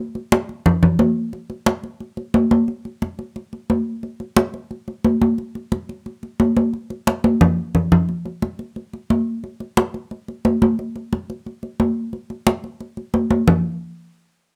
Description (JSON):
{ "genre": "jazz", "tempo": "178 BPM", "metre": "4/4", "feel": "straight", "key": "none", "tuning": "none", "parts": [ { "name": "congas", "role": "percussion", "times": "0.2-13.6 s", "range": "none", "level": "-20 LUFS", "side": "equal", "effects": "none" } ], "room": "light reverb", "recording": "close, detailed microphones", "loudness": "-20 LUFS", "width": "mono", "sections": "0.0-2.7 A section; 2.7-13.5 B section; 13.5-14.6 C section", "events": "drum fill 7.1-8.1", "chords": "none" }